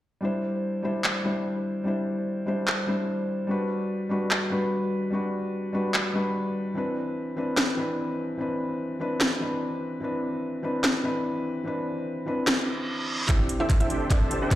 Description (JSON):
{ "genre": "future bass", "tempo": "147 BPM", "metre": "4/4", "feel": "half-time", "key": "C lydian", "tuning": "A4 = 440 Hz", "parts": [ { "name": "felt-muted upright piano", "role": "accompaniment", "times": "0.2-14.6 s", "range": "E3 to C5", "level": "-27 LUFS", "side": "left 1 dB", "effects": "sidechain pumping, digital delay" }, { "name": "trap drum kit", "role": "drums", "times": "1.0-14.6 s", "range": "handclaps, hi-hat, snare drum", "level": "-26 LUFS", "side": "equal", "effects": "overdrive" }, { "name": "reverse cymbal and riser", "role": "sound effects", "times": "12.6-14.6 s", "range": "none", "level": "-31 LUFS", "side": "right 2 dB", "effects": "none" }, { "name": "mallet-like synth pluck", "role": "melody", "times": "13.3-14.6 s", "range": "B3 to E5", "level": "-32 LUFS", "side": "right 2 dB", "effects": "chorus, sidechain pumping, digital delay" }, { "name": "dense compressed supersaw", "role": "riff", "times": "13.3-14.6 s", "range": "D4 to A5", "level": "-30 LUFS", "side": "right 1 dB", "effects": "sidechain pumping, low-pass filter" }, { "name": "warm 808-style bass", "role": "bass", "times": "13.3-14.6 s", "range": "D2", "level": "-42 LUFS", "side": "equal", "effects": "none" }, { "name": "electronic kick drum", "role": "drums", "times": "13.3-14.6 s", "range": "none", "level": "-21 LUFS", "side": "equal", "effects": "none" } ], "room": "moderate digital room reverb, RT60 1.2 s, digital ambience", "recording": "played on a big sound system in a bare room, stone room reverb", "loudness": "-25 LUFS", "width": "side -14 dB against mid", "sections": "0.2-13.3 A section; 13.3-14.6 B section", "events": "reverse cymbal 12.6-13.3; build-up 13.3-14.6; drum fill 13.3-14.6; riser 13.3-14.6", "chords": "0.2 D9sus4; 3.5 Gmaj7; 6.8 Cmaj9; 13.3 D9sus4", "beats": "| 0.23 0.64 1.04 1.45 | 1.86 2.27 2.68 3.08 | 3.49 3.90 4.31 4.72 | 5.12 5.53 5.94 6.35 | 6.76 7.17 7.57 7.98 | 8.39 8.80 9.21 9.62 | 10.02 10.43 10.84 11.25 | 11.66 12.06 12.47 12.88 | 13.29 13.70 14.11 14.51" }